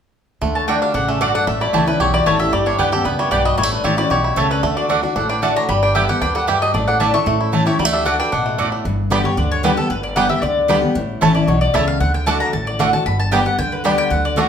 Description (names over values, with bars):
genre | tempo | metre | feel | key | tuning
bluegrass | 228 BPM | 4/4 | straight | D major | A4 = 440 Hz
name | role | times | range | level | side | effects
bluegrass banjo | melody | 0.4-14.4 s | G3 to G4 | -22 LUFS | right 5 dB | none
picked steel-string acoustic guitar | accompaniment | 0.4-14.5 s | E2 to G4 | -20 LUFS | left 2 dB | none
upright bass | bass | 0.4-14.5 s | G1 to D2 | -24 LUFS | equal | none
mandolin | melody | 0.6-14.5 s | A4 to C#6 | -20 LUFS | left 3 dB | none
lap resonator guitar | second line | 0.6-8.7 s | C#4 to E5 | -25 LUFS | left 3 dB | none
mandolin | stabs | 0.7-14.5 s | A3 to A5 | -22 LUFS | right 5 dB | none
room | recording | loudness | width
wet large studio reverb, RT60 1.0 s | band playing live in one room | -15 LUFS | side -8 dB against mid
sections
0.4-8.8 A section; 8.8-14.5 B section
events
none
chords
0.4 D; 1.5 A; 2.5 G; 3.6 A; 4.6 D; 5.7 G; 6.7 Asus4; 7.3 A; 7.8 D; 8.8 G; 11.0 A; 12.0 D; 13.1 G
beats
| 0.42 0.68 0.94 1.21 | 1.47 1.74 2.00 2.26 | 2.53 2.79 3.05 3.32 | 3.58 3.84 4.11 4.37 | 4.63 4.90 5.16 5.42 | 5.69 5.95 6.21 6.48 | 6.74 7.00 7.27 7.53 | 7.79 8.06 8.32 8.59 | 8.85 9.11 9.37 9.64 | 9.90 10.16 10.43 10.69 | 10.95 11.22 11.48 11.74 | 12.01 12.27 12.53 12.79 | 13.06 13.32 13.58 13.85 | 14.11 14.38